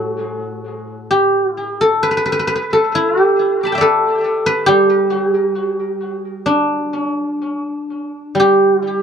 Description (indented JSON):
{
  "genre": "chinese traditional, Chinese solo plucked strings",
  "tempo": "62-70 BPM",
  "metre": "2/4",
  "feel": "rubato",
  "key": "unclear",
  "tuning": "A4 = 441 Hz",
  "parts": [
    { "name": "guzheng", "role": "solo", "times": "0.0-9.0 s", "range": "A2 to D6", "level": "-14 LUFS", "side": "equal", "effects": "tape echo" }
  ],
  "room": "moderate studio reverb, RT60 0.5 s",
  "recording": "dark, warm production",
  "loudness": "-14 LUFS",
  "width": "side -7 dB against mid",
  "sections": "0.0-8.4 A section",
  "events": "none",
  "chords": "none",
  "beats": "0.17 | 1.12 2.05 | 2.95 3.83 | 4.69 5.57 | 6.48 7.42 | 8.39"
}